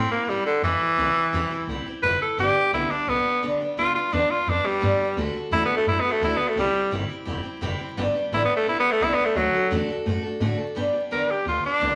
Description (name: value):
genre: rockabilly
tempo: 172 BPM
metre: 4/4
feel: straight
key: G major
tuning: A4 = 440 Hz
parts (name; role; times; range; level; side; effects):
- raspy tenor saxophone; melody; 0.0-12.0 s; D3 to B4; -24 LUFS; equal; none
- picked steel-string acoustic guitar; accompaniment; 0.0-12.0 s; G2 to A4; -30 LUFS; equal; none
- upright bass; bass; 0.0-12.0 s; E1 to A2; -32 LUFS; equal; none
room: wet studio reverb, RT60 0.9 s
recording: vinyl crackle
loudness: -23 LUFS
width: mono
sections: 0.0-10.8 A section; 10.8-12.0 B section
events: tenor saxophone solo 0.0-10.8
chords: 0.0 C; 2.4 G; 5.2 D; 6.6 C; 8.0 G; 9.4 D; 10.8 G